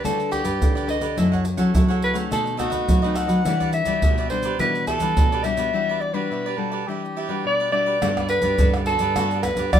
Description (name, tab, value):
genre	samba and choro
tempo	105 BPM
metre	4/4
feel	straight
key	E minor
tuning	A4 = 436 Hz
part	mellow soprano saxophone	melody	0.0-9.8 s	F#4 to F#5	-23 LUFS	left 1 dB	none
part	cavaquinho	accompaniment	0.0-9.8 s	D#4 to F#5	-30 LUFS	right 9 dB	none
part	nylon-string guitar	accompaniment	0.0-9.8 s	B2 to B4	-29 LUFS	left 7 dB	none
part	nylon-string guitar	bass	0.0-9.8 s	F#2 to F#3	-24 LUFS	equal	none
part	egg shaker, surdo, pandeiro and tamborim	percussion	0.1-9.8 s	none	-24 LUFS	right 1 dB	none
room	moderate studio reverb, RT60 0.6 s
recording	minimal, uncompressed stereo recording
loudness	-19 LUFS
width	side -9 dB against mid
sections	0.0-8.0 A section; 8.0-9.8 B section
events	break 5.7-8.0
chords	0.0 Gmaj7; 1.2 F#m7; 2.3 B7b9; 3.5 Em9; 8.0 Gmaj9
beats	0.04 0.61 | 1.18 1.75 2.32 2.89 | 3.46 4.03 4.60 5.17 | 5.74 6.31 6.88 7.45 | 8.02 8.59 9.16 9.73